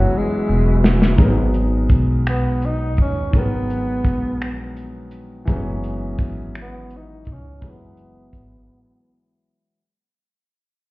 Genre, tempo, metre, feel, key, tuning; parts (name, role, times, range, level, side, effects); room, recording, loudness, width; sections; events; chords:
slow six-eight R&B; 56 BPM (dotted quarters); 6/8; straight; G# minor; A4 = 442 Hz
breathy tenor saxophone; melody; 0.0-9.4 s; F#3 to D#4; -25 LUFS; equal; low-pass filter, ping-pong delay
clear concert grand piano; accompaniment; 0.0-9.8 s; D#3 to A#4; -25 LUFS; left 1 dB; low-pass filter
tonewheel organ; sustained chords; 0.0-1.1 s; F#3 to E5; -27 LUFS; right 1 dB; overdrive, chorus vibrato, slow rotary speaker
upright bass; bass; 0.0-8.7 s; E1 to D#2; -21 LUFS; equal
warm soul drum kit; drums; 0.8-8.5 s; finger snaps, hi-hat, kick drum, snare drum; -17 LUFS; equal
light reverb; heard muffled through a wall, stone room reverb, EQ, nothing above 7.7 kHz; -16 LUFS; side -20 dB against mid
0.0-1.2 A section; 1.2-9.8 B section
drum fill 0.1-1.2; fade-out 1.2-9.8; filter sweep 1.2-9.8; break 8.7-9.8
0.0 F#9sus4; 1.2 G#m9; 5.5 F#9sus4